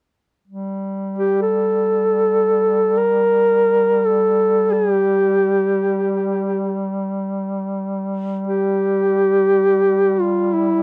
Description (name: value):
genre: caucasian folk, Caucasian lament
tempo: free time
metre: none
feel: none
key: G dorian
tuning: A4 = 440 Hz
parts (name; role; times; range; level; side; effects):
- mellow duduk; drone; 0.5-10.8 s; G3; -26 LUFS; equal; none
- dark duduk; melody; 1.2-10.8 s; E4 to Bb4; -18 LUFS; equal; none
room: moderate booth ambience, RT60 0.2 s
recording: dry, close 1970s-style studio recording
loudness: -18 LUFS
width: mono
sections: 0.5-10.8 A section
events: none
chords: none